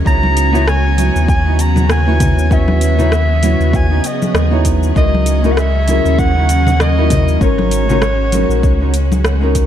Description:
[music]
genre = sunset chillout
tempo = 98 BPM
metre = 4/4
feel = swing 57% on 16ths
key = C# dorian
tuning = A4 = 437 Hz
[part]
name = nylon-string guitar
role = accompaniment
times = 0.0-9.7 s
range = G#3 to D#5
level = -20 LUFS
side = moving between left 3 dB and right 5 dB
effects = auto-pan, digital delay
[part]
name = soft string machine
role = sustained chords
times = 0.0-9.7 s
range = C#3 to C#5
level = -21 LUFS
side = right 1 dB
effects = ensemble chorus
[part]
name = warm sub bass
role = bass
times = 0.0-9.7 s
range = G#1 to D#2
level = -14 LUFS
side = equal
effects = tube saturation
[part]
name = dark soprano saxophone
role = melody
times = 0.1-9.2 s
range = C#5 to A#5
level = -19 LUFS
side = equal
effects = tape echo
[part]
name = deep house drum kit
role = drums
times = 0.1-9.7 s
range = hi-hat, rim click, shaker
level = -22 LUFS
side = equal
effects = overdrive, small room ambience
[part]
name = electronic kick drum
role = drums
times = 0.1-9.7 s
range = none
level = -15 LUFS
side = equal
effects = overdrive, small room ambience
[part]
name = congas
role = percussion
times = 0.2-9.2 s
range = none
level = -21 LUFS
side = left 1 dB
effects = none
[sound]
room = light reverb, small room ambience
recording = dark, warm production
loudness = -11 LUFS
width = side -10 dB against mid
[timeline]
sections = 0.0-9.7 A section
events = none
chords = 0.1 C#m11; 5.0 F#13/C#; 7.4 G#9sus4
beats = | 0.06 0.67 1.28 1.90 | 2.51 3.12 3.73 4.35 | 4.96 5.57 6.18 6.79 | 7.41 8.02 8.63 9.24

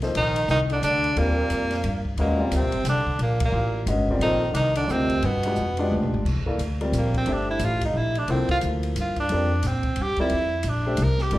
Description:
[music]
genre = modal jazz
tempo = 177 BPM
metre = 3/4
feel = swing 62% on 8ths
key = C mixolydian from 6.2 s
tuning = A4 = 440 Hz
[part]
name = warm grand piano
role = accompaniment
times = 0.0-11.4 s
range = F3 to F5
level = -27 LUFS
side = left 2 dB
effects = slapback echo
[part]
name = upright bass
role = bass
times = 0.0-11.4 s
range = G1 to Bb2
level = -25 LUFS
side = equal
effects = none
[part]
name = open jazz drum kit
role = drums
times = 0.0-11.4 s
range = crash cymbal, hi-hat, kick drum, ride cymbal, snare drum, toms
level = -33 LUFS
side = equal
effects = none
[part]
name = trombone with plunger mute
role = second line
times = 0.1-6.1 s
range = Bb2 to Eb3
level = -31 LUFS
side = left 2 dB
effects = slapback echo
[part]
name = bright tenor saxophone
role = melody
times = 0.2-11.4 s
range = Bb3 to Bb4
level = -25 LUFS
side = right 2 dB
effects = slapback echo
[sound]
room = light reverb, studio ambience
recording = live gig heard through the venue's PA, club ambience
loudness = -21 LUFS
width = side -16 dB against mid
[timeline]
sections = 0.0-6.2 A section; 6.2-11.4 B section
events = band accent 3.4; drum fill 5.9-6.2; tenor saxophone solo 6.2-11.4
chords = 0.0 Ebmaj9; 5.2 G7b9; 6.2 C9sus4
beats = | 0.15 0.49 0.83 | 1.17 1.51 1.85 | 2.19 2.52 2.86 | 3.20 3.54 3.88 | 4.22 4.55 4.89 | 5.23 5.57 5.91 | 6.25 6.59 6.92 | 7.26 7.60 7.94 | 8.28 8.62 8.96 | 9.29 9.63 9.97 | 10.31 10.65 10.99 | 11.32

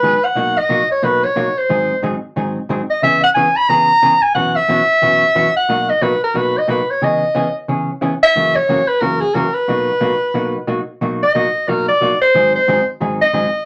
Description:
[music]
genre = country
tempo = 180 BPM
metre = 4/4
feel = swing 62% on 8ths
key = B major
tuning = A4 = 437 Hz
[part]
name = mellow soprano saxophone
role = melody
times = 0.0-13.7 s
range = G#4 to B5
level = -16 LUFS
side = equal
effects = none
[part]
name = hollow-body jazz guitar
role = accompaniment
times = 0.0-13.5 s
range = F#2 to G#4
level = -22 LUFS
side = equal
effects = none
[sound]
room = wet studio ambience, RT60 0.5 s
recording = none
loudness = -16 LUFS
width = mono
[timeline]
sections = 0.0-11.0 A section; 11.0-13.7 B section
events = soprano saxophone solo 11.0-13.7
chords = 0.4 Bmaj7; 1.7 G#7; 3.0 C#m7; 4.4 F#7sus4; 5.7 Bmaj7; 7.0 C#m7; 8.3 F#7; 9.7 Bmaj7; 12.3 G#7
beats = 0.03 | 0.36 0.70 1.03 1.36 | 1.69 2.03 2.36 2.69 | 3.02 3.36 3.69 4.02 | 4.36 4.69 5.02 5.36 | 5.69 6.02 6.35 6.69 | 7.02 7.35 7.68 8.02 | 8.35 8.68 9.02 9.35 | 9.68 10.01 10.35 10.68 | 11.01 11.35 11.68 12.01 | 12.34 12.68 13.01 13.34

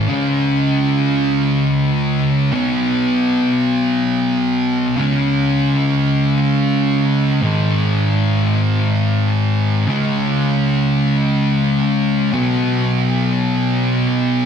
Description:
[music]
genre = rock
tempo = free time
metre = none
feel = none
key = unclear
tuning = A4 = 443 Hz
[part]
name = thick fuzz guitar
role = solo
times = 0.0-14.5 s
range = Ab2 to Db4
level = -14 LUFS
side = equal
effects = distortion, wide subtle chorus
[sound]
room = moderate lush hall reverb, RT60 1.9 s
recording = dense, heavily limited modern master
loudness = -14 LUFS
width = side -7 dB against mid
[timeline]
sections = 0.0-14.5 A section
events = none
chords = 0.1 Db5; 2.5 Cb5; 5.0 Db5; 7.4 Ab5; 9.9 Db5; 12.3 Cb5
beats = free time

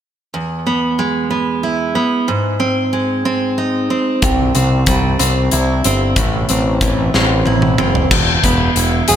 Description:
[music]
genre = quiet-loud alternative rock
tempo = 62 BPM (dotted quarters)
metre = 6/8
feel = straight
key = unclear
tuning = A4 = 438 Hz
[part]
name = picked steel-string acoustic guitar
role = arpeggios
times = 0.3-9.2 s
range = E2 to G#4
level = -16 LUFS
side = right 2 dB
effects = analog delay
[part]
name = growling picked electric bass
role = bass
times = 4.2-9.2 s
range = E1 to C2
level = -17 LUFS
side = left 1 dB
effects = overdrive
[part]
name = big rock drum kit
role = drums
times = 4.2-9.2 s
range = crash cymbal, hi-hat, kick drum, snare drum, toms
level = -16 LUFS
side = left 1 dB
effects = none
[sound]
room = light reverb, studio reverb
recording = none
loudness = -13 LUFS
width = side -9 dB against mid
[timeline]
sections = 0.3-8.1 A section; 8.1-9.2 B section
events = drum fill 7.1-8.1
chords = 0.3 E; 2.3 G#; 4.2 C; 6.2 Am; 8.1 E5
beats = | 0.34 1.31 | 2.29 3.26 | 4.23 5.20 | 6.17 7.14 | 8.11 9.08

